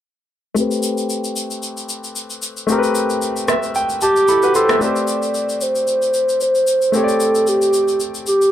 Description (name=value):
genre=amapiano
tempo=113 BPM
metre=4/4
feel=swing 55% on 16ths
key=A minor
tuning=A4 = 439 Hz
part: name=clear concert grand piano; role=accompaniment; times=0.5-8.5 s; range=A3 to C6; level=-20 LUFS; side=left 2 dB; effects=low-pass filter
part: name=electronic shaker and rim click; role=drums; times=0.6-8.5 s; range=none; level=-24 LUFS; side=equal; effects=none
part: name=warm clarinet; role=melody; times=4.0-8.5 s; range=G4 to D5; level=-15 LUFS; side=right 1 dB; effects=low-pass filter, digital delay
room=moderate plate reverb, RT60 1.7 s, small room ambience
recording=dark, warm production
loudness=-15 LUFS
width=side -11 dB against mid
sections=0.6-4.8 A section; 4.8-8.5 B section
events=filter sweep on grand piano 0.6-4.8; grand piano fill 3.2-4.8; filter sweep 4.8-8.5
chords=0.6 Am9; 4.8 Am7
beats=| 0.56 1.10 1.63 2.16 | 2.69 3.22 3.75 4.28 | 4.81 5.34 5.88 6.41 | 6.94 7.47 8.00